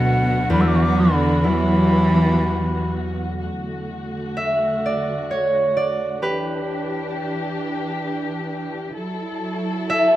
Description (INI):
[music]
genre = celtic folk, Celtic slow air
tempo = 58-67 BPM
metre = 3/4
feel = rubato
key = E minor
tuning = A4 = 440 Hz
[part]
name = warm cello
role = melody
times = 0.0-2.9 s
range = B2 to G3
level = -20 LUFS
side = right 1 dB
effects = none
[part]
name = bright baroque flute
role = second line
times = 0.0-2.9 s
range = F#5 to E6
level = -24 LUFS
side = left 1 dB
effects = none
[part]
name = concert harp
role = accompaniment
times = 0.0-10.2 s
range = D2 to E5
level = -20 LUFS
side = equal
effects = none
[part]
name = dark studio string section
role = sustained chords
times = 0.0-10.2 s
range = B2 to A4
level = -27 LUFS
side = equal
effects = none
[sound]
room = light reverb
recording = rough home demo mix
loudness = -19 LUFS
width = side -14 dB against mid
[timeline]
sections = 0.0-3.4 A section; 3.4-10.2 B section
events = harp solo 3.4-10.2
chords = 0.0 D6; 0.5 Emadd9; 3.4 D; 6.2 Em7; 9.0 F#m7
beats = | 0.51 1.43 2.42 | 3.42 4.38 5.31 | 6.24 7.15 8.05 | 8.96 9.87